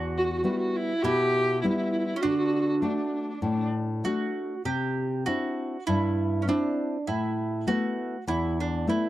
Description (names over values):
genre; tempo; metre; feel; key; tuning
italian folk, Italian serenade; 100 BPM; 4/4; swing 54% on 8ths, rubato; unclear; A4 = 440 Hz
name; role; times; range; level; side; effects
bowl-back mandolin; second line; 0.0-9.1 s; C#4 to G4; -30 LUFS; right 4 dB; none
nylon-string guitar; accompaniment; 0.0-9.1 s; E2 to F#4; -28 LUFS; left 2 dB; none
rich viola; melody; 0.2-3.7 s; D4 to G4; -28 LUFS; equal; none
room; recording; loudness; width
little or no reverb; dry, close 1970s-style studio recording; -25 LUFS; side -14 dB against mid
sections
0.0-9.1 A section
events
none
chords
0.0 Em; 2.2 D; 4.7 Cadd9; 7.1 Asus2